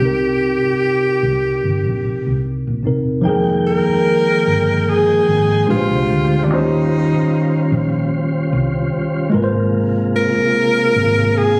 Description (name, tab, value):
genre	R&B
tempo	74 BPM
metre	4/4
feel	swing 55% on 16ths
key	F minor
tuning	A4 = 440 Hz
part	breathy tenor saxophone	melody	0.0-11.6 s	D4 to Bb4	-19 LUFS	equal	slapback echo
part	tine electric piano	accompaniment	0.0-11.6 s	Bb2 to G5	-21 LUFS	equal	overdrive
part	vintage muted fingered electric bass	bass	0.0-11.6 s	E1 to Eb2	-23 LUFS	equal	none
part	tonewheel organ	sustained chords	3.2-11.6 s	C3 to G5	-24 LUFS	equal	slow rotary speaker, chorus vibrato
room	little or no reverb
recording	recorded on a phone in the room, club reverb, compression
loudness	-17 LUFS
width	mono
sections	0.0-3.2 A section; 3.2-11.6 B section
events	none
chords	0.0 Cm7; 3.2 Fm11; 5.7 Bb13; 6.5 Eb13; 9.3 Ab69